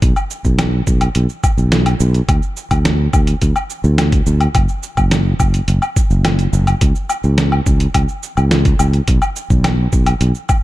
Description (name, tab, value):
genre	sunset chillout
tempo	106 BPM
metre	4/4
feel	straight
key	unclear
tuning	A4 = 440 Hz
part	sustaining fretless electric bass	bass	0.0-10.3 s	F#1 to D2	-14 LUFS	equal	none
part	dusty soul sampler-style drum kit	drums	0.0-10.6 s	cabasa, hi-hat, snare drum, woodblock	-19 LUFS	equal	overdrive
part	electronic kick drum	drums	0.0-10.6 s	none	-16 LUFS	equal	overdrive
room	little or no reverb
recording	dark, warm production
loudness	-13 LUFS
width	side -16 dB against mid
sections	0.0-10.6 A section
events	none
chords	none